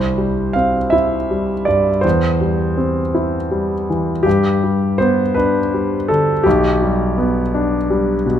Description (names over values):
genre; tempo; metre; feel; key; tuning
classical, romantic nocturne for solo piano; 54 BPM (dotted quarters); 6/8; rubato; C major; A4 = 440 Hz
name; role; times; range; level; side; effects
clear grand piano; solo; 0.0-8.4 s; B1 to F5; -14 LUFS; equal; none
room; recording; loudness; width
moderate recital hall reverb, RT60 1.4 s; close, detailed microphones; -14 LUFS; side -9 dB against mid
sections
0.0-8.4 A section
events
none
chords
0.0 C; 2.0 C/E; 4.3 G; 6.5 G/B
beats
0.93 | 2.04 3.14 | 4.26 5.36 | 6.46 7.54